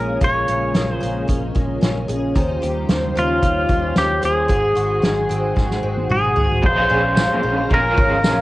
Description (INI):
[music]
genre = dream pop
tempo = 112 BPM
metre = 4/4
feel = straight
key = unclear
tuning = A4 = 439 Hz
[part]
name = pedal steel guitar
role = melody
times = 0.0-8.4 s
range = F4 to Db5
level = -19 LUFS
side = equal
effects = none
[part]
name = ensemble organ-string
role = sustained chords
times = 0.0-8.4 s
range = Db3 to Bb5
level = -26 LUFS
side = equal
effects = phaser, ensemble chorus
[part]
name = picked twelve-string acoustic guitar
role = arpeggios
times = 0.0-8.4 s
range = Ab2 to C5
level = -25 LUFS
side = left 2 dB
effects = ensemble chorus, analog delay
[part]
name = vintage muted fingered electric bass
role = bass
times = 0.0-8.4 s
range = Ab1 to Eb2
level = -25 LUFS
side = equal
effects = none
[part]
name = soft-mallet drum kit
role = drums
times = 0.2-8.4 s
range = crash cymbal, hi-hat, kick drum, ride cymbal, snare drum, tambourine, toms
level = -20 LUFS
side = equal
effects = none
[part]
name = crunchy overdriven guitar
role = accompaniment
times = 6.6-8.4 s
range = Bb2 to Ab4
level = -24 LUFS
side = right 2 dB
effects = tremolo, ensemble chorus
[sound]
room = light reverb, studio ambience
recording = home recording on cassette, nothing above 10.5 kHz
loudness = -16 LUFS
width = side -18 dB against mid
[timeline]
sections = 0.0-6.6 A section; 6.6-8.4 B section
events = drum fill 5.6-6.6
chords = 0.0 Bbm7; 2.4 Eb13; 4.5 Ab7; 6.6 Bbm7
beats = | 0.21 0.75 1.28 1.82 | 2.35 2.89 3.43 3.96 | 4.50 5.03 5.57 6.11 | 6.64 7.18 7.71 8.25